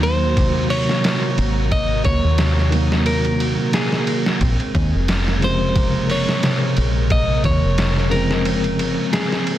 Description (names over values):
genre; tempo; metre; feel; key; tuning
trip hop; 89 BPM; 4/4; swing 56% on 16ths; Bb minor; A4 = 440 Hz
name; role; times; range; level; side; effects
clean electric guitar; melody; 0.0-9.6 s; Ab4 to Eb5; -24 LUFS; left 1 dB; tape echo
tine electric piano; accompaniment; 0.0-9.6 s; C3 to C4; -23 LUFS; equal; medium stereo tremolo, harmonic tremolo, vintage 12-bit sampler grit, tape echo
string machine, cellos; sustained chords; 0.0-9.6 s; Ab3 to Bb5; -28 LUFS; equal; ensemble chorus
concert harp; arpeggios; 0.0-9.6 s; C3 to C4; -25 LUFS; right 2 dB; digital delay
deep dub fingered electric bass; bass; 0.0-8.9 s; F1 to Eb2; -20 LUFS; equal; none
trip hop sampler-style drum kit; drums; 0.0-9.6 s; hi-hat, kick drum, ride cymbal, snare drum; -22 LUFS; equal; none
room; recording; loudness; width
light reverb; dense, heavily limited modern master, vinyl crackle; -16 LUFS; side -12 dB against mid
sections
0.0-9.6 A section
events
none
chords
0.0 Ab9sus4; 4.4 Bbm9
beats
0.37 1.04 | 1.72 2.39 3.07 3.74 | 4.41 5.09 5.76 6.44 | 7.11 7.79 8.46 9.13